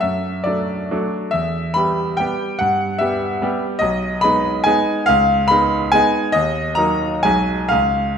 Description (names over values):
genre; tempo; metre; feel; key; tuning
classical, romantic triple-time dance for piano with dotted rhythms; 113-155 BPM; 3/4; rubato; unclear; A4 = 441 Hz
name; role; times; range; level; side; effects
bright grand piano; solo; 0.0-8.2 s; B1 to B5; -16 LUFS; equal; none
room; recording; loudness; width
wet recital hall reverb, RT60 1.5 s; none; -16 LUFS; side -7 dB against mid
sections
0.0-8.2 A section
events
none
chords
0.0 D/F#; 1.3 Em; 2.6 Em/G; 3.8 G#m/B; 5.1 C#9; 6.4 D#m; 7.3 G#m7/B